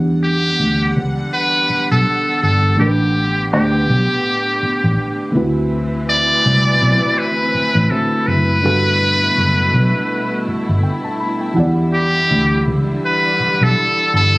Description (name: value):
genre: R&B, neo-soul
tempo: 82 BPM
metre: 4/4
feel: swing 57% on 16ths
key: E minor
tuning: A4 = 441 Hz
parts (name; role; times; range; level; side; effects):
- mellow FM electric piano; accompaniment; 0.0-14.4 s; A2 to B5; -22 LUFS; equal; chorus, phaser
- rich studio string section; sustained chords; 0.0-14.4 s; B2 to F#5; -24 LUFS; equal; none
- vintage muted fingered electric bass; bass; 0.0-14.4 s; F#1 to E2; -16 LUFS; equal; none
- trumpet with metal mute; melody; 0.2-14.4 s; G4 to D5; -16 LUFS; equal; slapback echo
room: little or no reverb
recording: recorded on a phone in the room, club reverb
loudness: -13 LUFS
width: side -22 dB against mid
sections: 0.0-14.4 A section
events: none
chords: 0.0 Em9; 2.8 A9sus4; 5.3 D13; 8.6 Gmaj9; 11.6 Em9